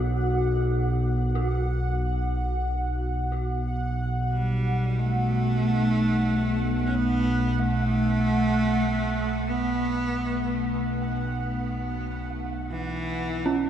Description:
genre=dark ambient drone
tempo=free time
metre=none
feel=none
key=unclear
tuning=A4 = 437 Hz
part: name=dark detuned synth bell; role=arpeggios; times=0.0-13.7 s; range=C#4 to F#4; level=-32 LUFS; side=equal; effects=chorus, tape echo
part: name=analog drone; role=drone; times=0.0-13.7 s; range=B1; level=-26 LUFS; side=right 1 dB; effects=wide subtle chorus
part: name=bubbling stepped-filter texture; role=texture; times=0.0-13.7 s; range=F#5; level=-34 LUFS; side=right 1 dB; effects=chorus, built-in reverb
part: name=clear cello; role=melody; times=4.3-13.7 s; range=E3 to C#4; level=-26 LUFS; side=equal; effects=tape echo
room=wet huge ambient reverb, RT60 9.1 s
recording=in a vast, echoing space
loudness=-23 LUFS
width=side -9 dB against mid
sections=0.0-13.7 A section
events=fade-in on synth texture 0.0-13.7; filter sweep on synth drone 0.0-13.7; fade-out 9.3-13.7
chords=0.0 B5; 2.4 Asus2/B

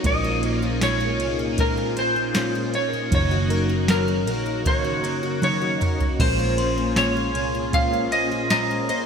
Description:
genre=dream pop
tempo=78 BPM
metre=4/4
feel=straight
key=Bb minor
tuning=A4 = 440 Hz
part: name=mellow electric guitar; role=accompaniment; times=0.0-9.1 s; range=Bb2 to C5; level=-29 LUFS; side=right 2 dB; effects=harmonic tremolo, wide subtle chorus
part: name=string machine, violins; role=sustained chords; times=0.0-9.1 s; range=Bb2 to Ab4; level=-27 LUFS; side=equal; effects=phaser, ensemble chorus
part: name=picked plugged-in twelve-string acoustic guitar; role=arpeggios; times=0.0-9.1 s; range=Bb2 to C5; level=-30 LUFS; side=left 2 dB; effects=analog chorus, digital delay
part: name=vintage muted picked electric bass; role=bass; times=0.0-9.1 s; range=Gb1 to C2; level=-27 LUFS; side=equal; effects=none
part: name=soft vintage rhythm box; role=drums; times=0.0-9.1 s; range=crash cymbal, kick drum, ride cymbal, snare drum, tambourine, toms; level=-27 LUFS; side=equal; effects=none
part: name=clean lap steel guitar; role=melody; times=0.1-9.1 s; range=Bb4 to F5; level=-24 LUFS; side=equal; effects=wide subtle chorus, digital delay
part: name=glockenspiel with brass mallets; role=texture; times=6.6-9.1 s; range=Bb5 to C6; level=-33 LUFS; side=left 3 dB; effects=stereo widening, digital delay
room=wet lush hall reverb, RT60 2.1 s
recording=bright 1980s-style digital production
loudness=-20 LUFS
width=side -6 dB against mid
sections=0.0-9.1 A section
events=drum fill 5.4-6.2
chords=0.0 Bbm9; 3.1 Gb6; 6.2 Bbm9

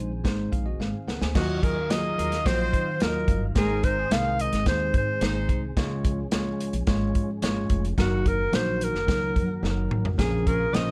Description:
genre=uptempo 1960s-style soul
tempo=109 BPM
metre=4/4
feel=straight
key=Ab mixolydian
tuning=A4 = 439 Hz
part: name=barky tine electric piano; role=accompaniment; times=0.0-10.9 s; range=F3 to Ab5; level=-34 LUFS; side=equal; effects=none
part: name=percussive tonewheel organ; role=sustained chords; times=0.0-10.9 s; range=Db3 to F5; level=-40 LUFS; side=equal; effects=none
part: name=upright bass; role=bass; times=0.0-10.9 s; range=F1 to Eb3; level=-31 LUFS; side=equal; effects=none
part: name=warm soul drum kit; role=drums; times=0.2-10.9 s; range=crash cymbal, hi-hat, kick drum, snare drum, toms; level=-29 LUFS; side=equal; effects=none
part: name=warm alto saxophone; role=melody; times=1.4-10.9 s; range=Gb4 to F5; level=-30 LUFS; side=equal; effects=none
part: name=warm horn section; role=second line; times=1.6-5.6, 10.5-10.9 s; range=Bb3 to C5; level=-38 LUFS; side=equal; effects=none
room=small room reverb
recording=dark, warm production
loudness=-25 LUFS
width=mono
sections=0.0-1.4 A section; 1.4-10.9 B section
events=drum fill 0.8-1.4, 9.6-10.2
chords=0.0 Ab; 1.4 Ebmadd9; 3.6 Ab; 5.8 Db; 8.0 Gb6; 10.2 Bbm

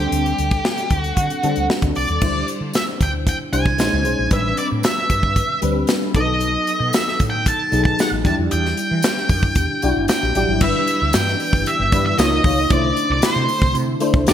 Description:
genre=polished 1980s jazz-funk pop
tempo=114 BPM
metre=4/4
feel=straight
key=G mixolydian from 10.6 s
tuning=A4 = 440 Hz
part: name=octave-fuzz lead guitar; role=melody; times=0.0-14.3 s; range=G4 to A5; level=-21 LUFS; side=equal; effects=distortion
part: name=FM electric piano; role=accompaniment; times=0.0-14.3 s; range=F#3 to C#5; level=-22 LUFS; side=left 2 dB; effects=ensemble chorus
part: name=woody fretless electric bass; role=bass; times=0.0-14.3 s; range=F1 to E3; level=-22 LUFS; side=equal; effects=lush chorus
part: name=modern studio drum kit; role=drums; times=0.1-14.3 s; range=crash cymbal, hi-hat, kick drum, snare drum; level=-20 LUFS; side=equal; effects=gated reverb
part: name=tambourine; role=percussion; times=2.5-14.3 s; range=none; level=-36 LUFS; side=right 8 dB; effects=none
part: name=soft string machine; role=sustained chords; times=10.6-14.3 s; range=D3 to G4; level=-29 LUFS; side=right 2 dB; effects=ensemble chorus
room=light reverb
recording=bright 1980s-style digital production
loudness=-16 LUFS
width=side -10 dB against mid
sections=0.0-2.2 A section; 2.2-10.6 B section; 10.6-14.3 C section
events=none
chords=0.0 D7sus4; 2.2 D9sus4; 3.8 Bbm11; 4.3 Am11; 6.2 B7; 8.3 Em9; 10.6 G6; 12.2 C#69; 12.7 C69

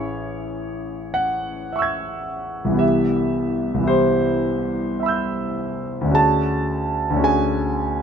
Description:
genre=classical, impressionist solo piano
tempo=46-57 BPM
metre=3/4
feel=rubato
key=unclear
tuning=A4 = 440 Hz
part: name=clear grand piano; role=solo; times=0.0-8.0 s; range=A1 to G#6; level=-19 LUFS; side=equal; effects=none
room=light reverb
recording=none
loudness=-19 LUFS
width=side -7 dB against mid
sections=0.0-8.0 A section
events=none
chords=0.0 Amaj7; 2.8 Cmaj7; 6.2 Dmaj7#11

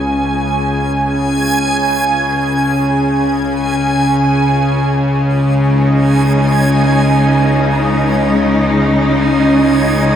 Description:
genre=dark ambient drone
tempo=free time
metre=none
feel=none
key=unclear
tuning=A4 = 440 Hz
part: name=bowed-like drone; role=drone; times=0.0-10.2 s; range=C#2 to C#3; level=-13 LUFS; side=left 1 dB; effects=built-in reverb
part: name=backwards swelling texture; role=texture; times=0.0-10.2 s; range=G#5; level=-18 LUFS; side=right 2 dB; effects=built-in reverb
part: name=clear studio cello section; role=sustained chords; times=5.2-10.2 s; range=C#3 to D#4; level=-14 LUFS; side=equal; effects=none
room=wet cathedral reverb, RT60 6.5 s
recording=none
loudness=-11 LUFS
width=side -9 dB against mid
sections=0.0-10.2 A section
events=none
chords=0.0 C#5

